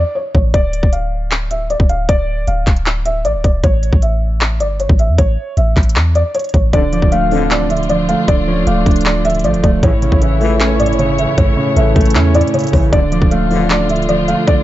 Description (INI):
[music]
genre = hip hop, trap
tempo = 155 BPM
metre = 4/4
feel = half-time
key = D harmonic minor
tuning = A4 = 440 Hz
[part]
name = felt-muted upright piano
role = melody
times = 0.0-14.6 s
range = C#5 to F5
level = -19 LUFS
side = equal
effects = none
[part]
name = clean 808-style bass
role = bass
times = 0.0-14.3 s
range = D1 to E2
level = -16 LUFS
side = equal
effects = none
[part]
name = trap drum kit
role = drums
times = 0.3-14.6 s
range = handclaps, hi-hat, kick drum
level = -15 LUFS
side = equal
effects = none
[part]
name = dark concert grand piano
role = accompaniment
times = 6.7-14.6 s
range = A2 to D5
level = -16 LUFS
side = right 3 dB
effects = none
[part]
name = muted studio string section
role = sustained chords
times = 6.7-14.6 s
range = D3 to C#5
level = -22 LUFS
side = left 1 dB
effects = none
[part]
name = warm brass ensemble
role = stabs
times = 6.7-13.9 s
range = A1 to E3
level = -21 LUFS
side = left 6 dB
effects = none
[part]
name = soft octave-layered synth lead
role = second line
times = 6.9-13.7 s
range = A4 to F5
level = -23 LUFS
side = left 7 dB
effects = chorus, tape echo
[sound]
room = studio reverb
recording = dark, warm production, nothing above 7.7 kHz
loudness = -11 LUFS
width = side -14 dB against mid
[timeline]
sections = 0.0-6.7 A section; 6.7-14.6 B section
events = break 0.0-0.5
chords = 0.0 A; 0.5 Dm; 3.6 A; 6.7 Dm; 9.8 A; 12.9 Dm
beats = 0.15 | 0.54 0.93 1.31 1.70 | 2.09 2.48 2.86 3.25 | 3.64 4.02 4.41 4.80 | 5.18 5.57 5.96 6.35 | 6.73 7.12 7.51 7.89 | 8.28 8.67 9.06 9.44 | 9.83 10.22 10.60 10.99 | 11.38 11.77 12.15 12.54 | 12.93 13.31 13.70 14.09 | 14.47